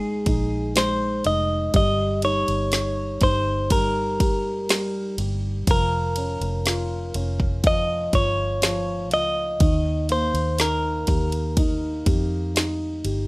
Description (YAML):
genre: pop ballad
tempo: 61 BPM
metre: 4/4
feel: straight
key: unclear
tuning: A4 = 440 Hz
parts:
  - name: direct-recorded clean electric guitar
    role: melody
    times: 0.0-12.5 s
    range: Ab4 to Eb5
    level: -24 LUFS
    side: equal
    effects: harmonic tremolo, plate reverb
  - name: felt-muted upright piano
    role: accompaniment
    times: 0.0-13.3 s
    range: Eb3 to G4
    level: -28 LUFS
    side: equal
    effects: none
  - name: vintage muted fingered electric bass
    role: bass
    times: 0.0-13.3 s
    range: F1 to F2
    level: -26 LUFS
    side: equal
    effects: none
  - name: deep house drum kit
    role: drums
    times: 0.3-13.3 s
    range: kick drum, ride cymbal, snare drum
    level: -23 LUFS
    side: equal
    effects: none
room: light reverb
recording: rough home demo mix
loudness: -20 LUFS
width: side -24 dB against mid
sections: 0.0-13.3 A section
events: none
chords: 0.0 Absus2; 1.7 Eb/G; 5.7 Bbm/F; 9.6 Eb